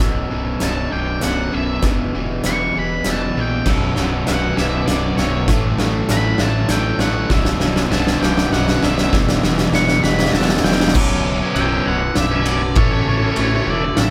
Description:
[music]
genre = post-rock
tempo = 99 BPM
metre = 3/4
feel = straight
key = B minor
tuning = A4 = 441 Hz
[part]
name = warbly tape-like pad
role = sustained chords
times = 0.2-14.1 s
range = C#3 to E5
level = -34 LUFS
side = equal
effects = none
[part]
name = glockenspiel with soft plastic mallets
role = arpeggios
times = 0.0-14.1 s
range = C#6 to F#6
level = -34 LUFS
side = equal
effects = none
[part]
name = twangy electric guitar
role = arpeggios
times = 0.0-14.1 s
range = B1 to A4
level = -36 LUFS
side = equal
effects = none
[part]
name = crunchy overdriven guitar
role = riff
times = 0.0-13.9 s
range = B1 to A4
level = -25 LUFS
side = equal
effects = spring reverb
[part]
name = fuzz fingered electric bass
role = bass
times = 0.0-14.1 s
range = B0 to A#1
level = -26 LUFS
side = equal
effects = overdrive
[part]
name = oversized low-tuned drum kit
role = drums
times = 0.0-14.1 s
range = crash cymbal, hi-hat, kick drum, ride cymbal, snare drum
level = -21 LUFS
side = equal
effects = none
[part]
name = octave-fuzz lead guitar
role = melody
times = 0.6-14.1 s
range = C#5 to C#6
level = -26 LUFS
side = equal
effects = distortion
[part]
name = crunchy overdriven guitar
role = riff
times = 3.7-10.9 s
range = B1 to A3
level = -27 LUFS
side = equal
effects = none
[sound]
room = moderate small room reverb, RT60 0.5 s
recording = band playing live in one room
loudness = -18 LUFS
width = mono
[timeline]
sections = 0.0-11.0 A section; 11.0-14.1 B section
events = build-up 0.0-11.0; drum fill 0.0-11.0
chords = 0.0 Bmadd9; 1.8 Em; 3.7 Bm; 5.5 A; 7.3 Bmadd9; 9.1 Em; 11.0 Bmadd9; 12.8 A

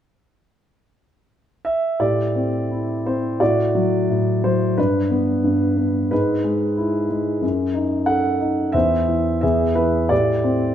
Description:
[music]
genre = classical, lyrical solo piano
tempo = 89 BPM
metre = 4/4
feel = uneven beats, rubato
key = unclear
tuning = A4 = 440 Hz
[part]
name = warm concert grand piano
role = solo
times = 1.6-10.7 s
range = E2 to F#5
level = -17 LUFS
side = equal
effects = none
[sound]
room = light reverb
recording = minimal, uncompressed stereo recording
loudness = -17 LUFS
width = side -10 dB against mid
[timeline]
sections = 0.0-2.0 A section; 2.0-10.7 B section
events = none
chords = 0.0 N.C.; 2.0 Am7; 3.4 D/A; 4.8 G; 6.1 E/G#; 7.4 F#m6; 8.7 C/E; 9.4 E; 10.1 Am7

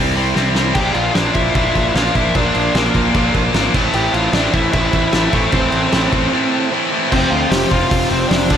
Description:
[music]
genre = punk rock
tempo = 151 BPM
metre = 4/4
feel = straight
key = unclear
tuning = A4 = 441 Hz
[part]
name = overdriven electric guitar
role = riff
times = 0.0-8.6 s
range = F2 to C4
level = -19 LUFS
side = left 14 dB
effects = none
[part]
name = overdriven electric guitar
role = riff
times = 0.0-8.6 s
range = F2 to F4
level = -20 LUFS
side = right 14 dB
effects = none
[part]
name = fuzz picked electric bass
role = bass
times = 0.0-8.6 s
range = F1 to D2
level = -21 LUFS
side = equal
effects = overdrive
[part]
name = loose indie drum kit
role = drums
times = 0.4-8.6 s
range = crash cymbal, hi-hat, kick drum, snare drum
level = -19 LUFS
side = equal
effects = none
[part]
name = smooth overdriven lead guitar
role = melody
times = 0.7-8.6 s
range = A3 to G5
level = -20 LUFS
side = equal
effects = ping-pong delay
[sound]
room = little or no reverb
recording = none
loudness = -13 LUFS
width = side -9 dB against mid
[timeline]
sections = 0.8-7.1 A section; 7.1-8.6 B section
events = drum fill 0.3-0.8; break 6.3-7.1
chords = 0.0 C; 0.8 Bb; 3.7 Am; 7.1 F

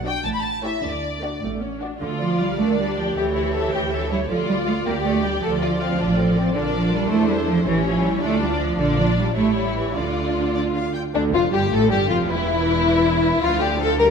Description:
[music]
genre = quick classical-period movement for string orchestra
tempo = 105 BPM (dotted quarters)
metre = 6/8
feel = rubato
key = D minor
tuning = A4 = 440 Hz
[part]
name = warm symphonic viola section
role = accompaniment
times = 0.0-14.1 s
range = D3 to G5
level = -26 LUFS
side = right 1 dB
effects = none
[part]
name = rich symphonic cello section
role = bass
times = 0.0-14.1 s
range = D2 to Bb3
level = -23 LUFS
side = right 3 dB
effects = none
[part]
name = rich symphonic double bass section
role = bass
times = 0.0-14.1 s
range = E1 to E2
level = -28 LUFS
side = right 3 dB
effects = none
[part]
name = rich symphonic violin section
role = melody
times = 0.1-14.1 s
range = D4 to B5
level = -29 LUFS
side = left 4 dB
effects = none
[part]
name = warm symphonic violin section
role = second line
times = 0.1-14.1 s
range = C4 to D5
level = -24 LUFS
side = left 4 dB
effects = none
[sound]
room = wet scoring stage reverb, RT60 1.9 s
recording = none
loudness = -19 LUFS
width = side -6 dB against mid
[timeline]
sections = 0.0-2.0 A section; 2.0-11.1 B section; 11.1-14.1 B section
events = none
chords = 0.2 A7; 0.8 D; 2.0 Dm; 2.6 Gm/D; 3.2 A7/D; 4.3 Dm; 4.9 Gm/D; 5.4 Dm; 6.5 Bb; 7.1 Fmaj13/E; 7.7 A7; 8.2 Dm; 8.8 Bb; 9.4 A7; 9.9 Dm; 11.7 Fadd9; 12.3 N.C.; 13.4 Dm

